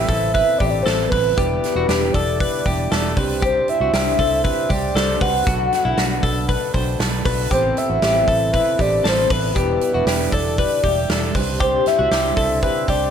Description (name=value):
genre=jangly indie pop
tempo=117 BPM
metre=4/4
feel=straight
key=E minor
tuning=A4 = 440 Hz
part: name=soft octave-layered synth lead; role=melody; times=0.0-13.1 s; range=B4 to F#5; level=-20 LUFS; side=left 1 dB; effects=chorus, phaser
part: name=combo organ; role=accompaniment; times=0.0-13.1 s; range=C4 to B5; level=-30 LUFS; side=right 4 dB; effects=none
part: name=fingerpicked twelve-string acoustic guitar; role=accompaniment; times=0.0-13.1 s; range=E2 to G4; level=-29 LUFS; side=right 5 dB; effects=none
part: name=twelve-string electric guitar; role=arpeggios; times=0.0-13.1 s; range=E4 to C5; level=-25 LUFS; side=left 6 dB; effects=none
part: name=vintage muted fingered electric bass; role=bass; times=0.0-13.1 s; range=E1 to C2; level=-24 LUFS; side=right 1 dB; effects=none
part: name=big rock drum kit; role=drums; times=0.1-13.0 s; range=hi-hat, kick drum, snare drum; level=-23 LUFS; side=right 1 dB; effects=gated reverb
room=light reverb, studio ambience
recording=none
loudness=-16 LUFS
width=side -8 dB against mid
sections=0.0-13.1 A section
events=transistor combo organ fill 6.5-7.5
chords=0.0 Amadd9; 1.4 Em7; 3.2 Csus2; 5.5 Bm7; 7.5 Amadd9; 9.6 Em7; 11.4 Csus2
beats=0.35 0.86 | 1.37 1.89 2.40 2.91 | 3.42 3.93 4.45 4.96 | 5.47 5.98 6.49 7.00 | 7.51 8.03 8.54 9.05 | 9.56 10.07 10.58 11.10 | 11.61 12.12 12.63